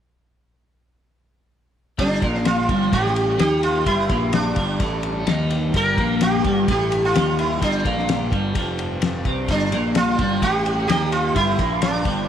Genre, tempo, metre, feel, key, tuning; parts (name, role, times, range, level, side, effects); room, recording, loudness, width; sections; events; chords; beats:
psychedelic rock; 128 BPM; 4/4; straight; G minor; A4 = 440 Hz
sitar; melody; 2.0-12.3 s; D4 to Bb4; -22 LUFS; right 2 dB; tape echo
twelve-string electric guitar; riff; 2.0-12.3 s; F2 to Eb3; -23 LUFS; equal; flanger, double-tracked left and right
fuzz picked electric bass; bass; 2.0-12.3 s; F1 to Eb2; -26 LUFS; equal; overdrive, transformer saturation
tanpura; drone; 2.0-12.3 s; G2 to D4; -33 LUFS; left 1 dB; stereo widening
cloth-damped thuddy drum kit; drums; 2.0-12.2 s; kick drum, ride cymbal, snare drum; -25 LUFS; left 3 dB
light reverb, small room ambience; 1960s-style stereo; -18 LUFS; side -9 dB against mid
2.0-12.3 A section
2.0 Gm
| 1.99 2.46 2.93 3.40 | 3.86 4.33 4.80 5.27 | 5.74 6.21 6.67 7.14 | 7.61 8.08 8.55 9.02 | 9.48 9.95 10.42 10.88 | 11.35 11.82